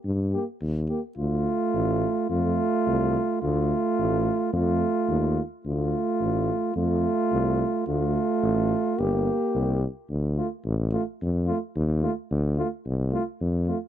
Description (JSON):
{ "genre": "balkan folk, Balkan brass band", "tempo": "108 BPM", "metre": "2/4", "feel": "swing 53% on 16ths", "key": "unclear", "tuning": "A4 = 440 Hz", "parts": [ { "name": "mellow tuba", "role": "bass", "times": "0.0-13.7 s", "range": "G1 to G2", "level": "-25 LUFS", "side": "left 1 dB", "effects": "none" }, { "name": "dark euphonium", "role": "accompaniment", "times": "0.3-13.8 s", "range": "A3 to Bb3", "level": "-28 LUFS", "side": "right 8 dB", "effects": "none" }, { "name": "mellow trombone", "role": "accompaniment", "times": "0.3-13.8 s", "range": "F4 to G4", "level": "-28 LUFS", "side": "left 4 dB", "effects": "none" } ], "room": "small room reverb", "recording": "dry, close 1970s-style studio recording", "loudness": "-23 LUFS", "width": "side -10 dB against mid", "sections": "0.0-1.2 A section; 1.2-10.1 B section; 10.1-13.9 B section", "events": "none", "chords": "0.0 Gm; 1.2 Dm; 2.3 F; 3.4 Dm; 4.5 F; 5.7 Dm; 6.8 F; 7.9 Dm; 9.0 Gm; 10.1 Dm; 11.2 F; 12.3 Dm", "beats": "| 0.04 0.61 | 1.17 1.74 | 2.30 2.86 | 3.42 3.98 | 4.54 5.09 | 5.65 6.21 | 6.76 7.32 | 7.88 8.43 | 8.99 9.54 | 10.09 10.65 | 11.20 11.75 | 12.30 12.86 | 13.41" }